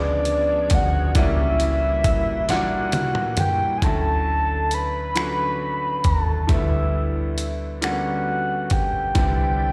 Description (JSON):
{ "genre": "slow six-eight R&B", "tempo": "45 BPM (dotted quarters)", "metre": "6/8", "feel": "straight", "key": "unclear", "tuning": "A4 = 440 Hz", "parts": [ { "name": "soft octave-layered synth lead", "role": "melody", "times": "0.0-9.7 s", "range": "D5 to B5", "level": "-26 LUFS", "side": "equal", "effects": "chorus, slapback echo" }, { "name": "bright grand piano", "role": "accompaniment", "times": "0.0-9.7 s", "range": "A#2 to F#4", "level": "-30 LUFS", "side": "equal", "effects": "slapback echo" }, { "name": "tonewheel organ", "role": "sustained chords", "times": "0.0-3.8, 9.2-9.7 s", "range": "A#2 to D5", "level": "-35 LUFS", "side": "equal", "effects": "overdrive, chorus vibrato, slow rotary speaker" }, { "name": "woody fretless electric bass", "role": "bass", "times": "0.0-9.7 s", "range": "C2 to D#2", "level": "-27 LUFS", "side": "equal", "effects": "analog chorus" }, { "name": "dusty soul sampler-style drum kit", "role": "drums", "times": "0.3-9.4 s", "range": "finger snaps, hi-hat, kick drum, snare drum, toms", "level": "-25 LUFS", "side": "equal", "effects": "none" } ], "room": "little or no reverb", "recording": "live gig heard through the venue's PA, recital hall reverb", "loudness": "-22 LUFS", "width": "mono", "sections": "0.0-3.8 A section; 3.8-9.7 B section", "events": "drum fill 2.5-3.8", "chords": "0.0 C#7b9; 1.2 F#7b9b13/C#; 3.8 Dmaj7; 6.5 G69/D; 9.2 Cmaj9" }